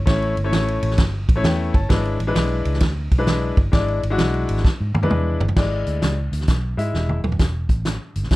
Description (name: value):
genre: uptempo 1960s-style soul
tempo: 131 BPM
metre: 4/4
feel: swing 66% on 8ths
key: unclear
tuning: A4 = 440 Hz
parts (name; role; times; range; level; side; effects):
- vintage muted fingered electric bass; bass; 0.0-8.4 s; D#1 to G#2; -22 LUFS; equal; none
- clear grand piano; accompaniment; 0.1-7.2 s; G#3 to A5; -23 LUFS; left 3 dB; none
- vintage drum kit; drums; 0.1-8.4 s; crash cymbal, hi-hat, kick drum, ride cymbal, snare drum, toms; -20 LUFS; equal; none
room: light reverb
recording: dark, warm production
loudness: -18 LUFS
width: side -18 dB against mid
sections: 0.0-5.6 A section; 5.6-7.4 B section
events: drum fill 4.6-5.6, 6.9-7.4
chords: 0.0 A; 1.9 E7; 5.6 E7/G#; 7.4 N.C.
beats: | 0.07 0.53 0.99 1.44 | 1.90 2.36 2.82 3.27 | 3.73 4.19 4.65 5.11 | 5.56 6.02 6.48 6.94 | 7.40 7.86 8.32